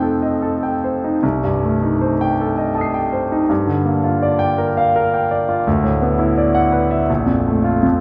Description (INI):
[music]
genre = classical, impressionist solo piano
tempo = 82 BPM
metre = 3/4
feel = uneven beats, rubato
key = unclear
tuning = A4 = 440 Hz
[part]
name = clear concert grand piano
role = solo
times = 0.0-8.0 s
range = Bb1 to C7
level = -18 LUFS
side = equal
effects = none
[sound]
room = wet recital hall reverb, RT60 1.6 s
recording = heard from further back in the room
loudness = -18 LUFS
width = mono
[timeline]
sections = 0.0-8.0 A section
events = none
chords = 0.0 F9; 1.2 Cm6; 3.5 Gm7; 5.7 D69; 7.1 Bb5